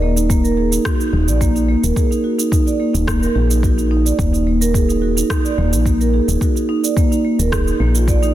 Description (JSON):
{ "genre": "organic downtempo", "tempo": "108 BPM", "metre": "4/4", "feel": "straight", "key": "Eb harmonic minor", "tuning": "A4 = 441 Hz", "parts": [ { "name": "marimba with soft mallets", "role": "arpeggios", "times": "0.0-8.3 s", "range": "Bb3 to D5", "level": "-18 LUFS", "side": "right 2 dB", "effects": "digital delay" }, { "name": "woody FM bass", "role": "bass", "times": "0.0-8.3 s", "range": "Eb1 to Bb1", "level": "-17 LUFS", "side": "left 1 dB", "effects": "sidechain pumping" }, { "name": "electronic cabasa and rim click", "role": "drums", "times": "0.2-8.3 s", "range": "none", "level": "-26 LUFS", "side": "right 3 dB", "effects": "none" }, { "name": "electronic kick drum", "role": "drums", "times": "0.3-8.2 s", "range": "none", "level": "-18 LUFS", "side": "left 1 dB", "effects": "none" } ], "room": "light reverb, digital ambience", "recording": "dense, heavily limited modern master", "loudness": "-14 LUFS", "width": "side -13 dB against mid", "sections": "0.0-8.3 A section", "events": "none", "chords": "0.0 Eb5" }